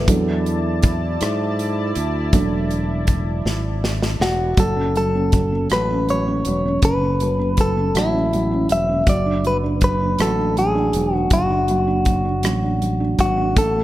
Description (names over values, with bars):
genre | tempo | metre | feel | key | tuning
six-eight pop ballad | 53 BPM (dotted quarters) | 6/8 | straight | unclear | A4 = 442 Hz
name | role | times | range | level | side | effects
felt-muted upright piano | accompaniment | 0.0-13.8 s | C#3 to A4 | -23 LUFS | right 2 dB | none
lush unison pad | sustained chords | 0.0-4.5 s | E4 to A5 | -27 LUFS | equal | chorus
modern bright fingered electric bass | bass | 0.0-13.8 s | E1 to G#2 | -23 LUFS | equal | none
modern studio drum kit | drums | 0.1-13.7 s | hi-hat, kick drum, rim click, snare drum | -20 LUFS | equal | none
direct-recorded clean electric guitar | melody | 4.2-13.8 s | E4 to E5 | -20 LUFS | left 1 dB | spring reverb, tape echo
room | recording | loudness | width
small room ambience | none | -17 LUFS | side -15 dB against mid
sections
0.1-4.6 A section; 4.6-13.8 B section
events
felt piano solo 0.1-4.6; drum fill 3.4-4.6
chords
0.1 E7sus4; 4.6 F#m7; 9.1 D